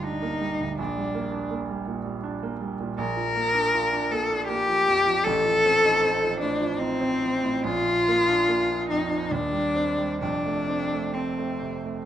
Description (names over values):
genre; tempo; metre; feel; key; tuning
classical, romantic duo for cello and grand piano; 63-84 BPM; 3/4; rubato; Bb major; A4 = 439 Hz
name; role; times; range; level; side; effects
rich cello; melody; 0.0-12.1 s; C4 to Bb4; -23 LUFS; left 2 dB; none
clear grand piano; accompaniment; 0.0-12.1 s; F1 to F4; -29 LUFS; right 5 dB; none
room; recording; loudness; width
moderate recital hall reverb, RT60 1.7 s; close, detailed microphones; -22 LUFS; side -10 dB against mid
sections
0.0-12.1 A section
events
none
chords
0.0 Gm; 0.8 Gm/Bb; 3.0 Bb; 5.2 F7/A; 7.7 Bb; 9.3 Cm/Eb; 10.2 F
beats
0.04 | 0.79 1.53 2.24 | 2.98 3.73 4.48 | 5.25 6.02 6.79 | 7.65 8.48 9.31 | 10.21 11.16